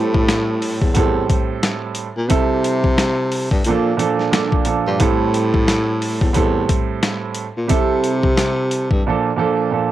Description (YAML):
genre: hip hop, boom-bap hip-hop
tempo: 89 BPM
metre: 4/4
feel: swing 59% on 16ths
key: A phrygian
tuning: A4 = 440 Hz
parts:
  - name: warm upright piano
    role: accompaniment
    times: 0.0-9.9 s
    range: A2 to A4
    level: -20 LUFS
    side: right 6 dB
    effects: cassette tape, high-pass filter, low-pass filter
  - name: breathy baritone saxophone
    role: bass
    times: 0.0-9.0 s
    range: E2 to C3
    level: -19 LUFS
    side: left 1 dB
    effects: none
  - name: boom bap sampler-style drum kit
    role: drums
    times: 0.1-9.0 s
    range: hi-hat, kick drum, snare drum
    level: -19 LUFS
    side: left 1 dB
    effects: none
room: small room ambience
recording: home recording on cassette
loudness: -16 LUFS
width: side -13 dB against mid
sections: 0.0-9.9 A section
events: none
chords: 0.0 Am7; 2.3 C6; 3.7 Bbmaj7; 5.0 Am7; 7.7 C6; 9.0 Bbmaj7